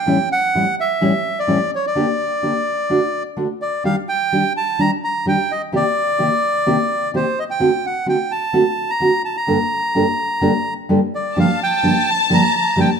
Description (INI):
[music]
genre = tango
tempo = 128 BPM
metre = 4/4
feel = rubato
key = G minor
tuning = A4 = 441 Hz
[part]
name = bandoneon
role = melody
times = 0.0-12.9 s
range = C5 to Bb5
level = -19 LUFS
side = right 1 dB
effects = none
[part]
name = nylon-string guitar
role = accompaniment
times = 0.1-12.9 s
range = G2 to A4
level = -19 LUFS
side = equal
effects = none
[part]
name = warm studio violin section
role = second line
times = 11.4-13.0 s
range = A5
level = -19 LUFS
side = left 5 dB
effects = none
[sound]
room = moderate recital hall reverb, RT60 1.4 s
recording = close, detailed microphones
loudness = -16 LUFS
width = side -6 dB against mid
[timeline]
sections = 0.0-13.0 A section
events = none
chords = 0.1 A7; 2.0 Gm/D; 2.9 D; 3.8 Ebmaj7; 5.7 Cm7; 7.6 D7; 9.5 Gmadd9; 11.4 Gm7